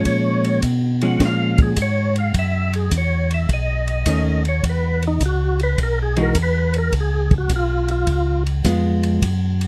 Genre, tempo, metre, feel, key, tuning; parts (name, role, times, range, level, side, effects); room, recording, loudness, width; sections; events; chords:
soul jazz organ trio; 105 BPM; 4/4; swing 68% on 8ths; A4 = 440 Hz
percussive tonewheel organ; melody; 0.0-8.4 s; D#4 to Gb5; -26 LUFS; equal; slow rotary speaker, overdrive, chorus vibrato
vintage hollow-body jazz guitar; accompaniment; 0.0-9.2 s; D#3 to F#4; -23 LUFS; equal
mellow tonewheel organ; bass; 0.0-9.7 s; B1 to Cb3; -22 LUFS; equal; slow rotary speaker
compact cocktail drum kit; drums; 0.1-9.7 s; hi-hat, kick drum, ride cymbal, snare drum; -25 LUFS; equal
little or no reverb; close, detailed microphones; -19 LUFS; mono
0.0-9.7 A section
tonewheel organ solo 0.0-9.7
0.1 Bbm7; 2.3 E69; 3.5 B9; 4.6 Esus2; 6.9 Db7